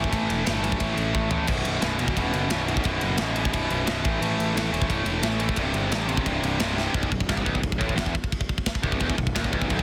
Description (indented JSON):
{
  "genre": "heavy metal",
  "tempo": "176 BPM",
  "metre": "4/4",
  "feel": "straight",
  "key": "unclear",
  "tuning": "A4 = 440 Hz",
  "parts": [
    { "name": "tight distorted guitar", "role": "riff", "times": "0.0-9.8 s", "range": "B1 to A3", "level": "-28 LUFS", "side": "equal", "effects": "distortion" },
    { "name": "fuzz picked electric bass", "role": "bass", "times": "0.0-9.8 s", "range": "B0 to A1", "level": "-32 LUFS", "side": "equal", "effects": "overdrive" },
    { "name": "tight metal drum kit", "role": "drums", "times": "0.0-9.8 s", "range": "china cymbal, crash cymbal, kick drum, ride cymbal, snare drum, toms", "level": "-30 LUFS", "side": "equal", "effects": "none" }
  ],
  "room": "little or no reverb",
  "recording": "dense, heavily limited modern master",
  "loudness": "-25 LUFS",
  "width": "mono",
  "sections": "0.0-6.9 A section; 6.9-9.8 B section",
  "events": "drum fill 1.1-1.5, 6.8",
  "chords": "0.0 A5; 1.5 B5; 4.0 A5; 5.6 C5; 6.9 N.C.",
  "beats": "| 0.12 0.46 0.80 1.14 | 1.49 1.83 2.17 2.51 | 2.85 3.19 3.53 3.88 | 4.22 4.56 4.90 5.24 | 5.58 5.92 6.26 6.60 | 6.95 7.29 7.63 7.97 | 8.31 8.66 9.00 9.34 | 9.69"
}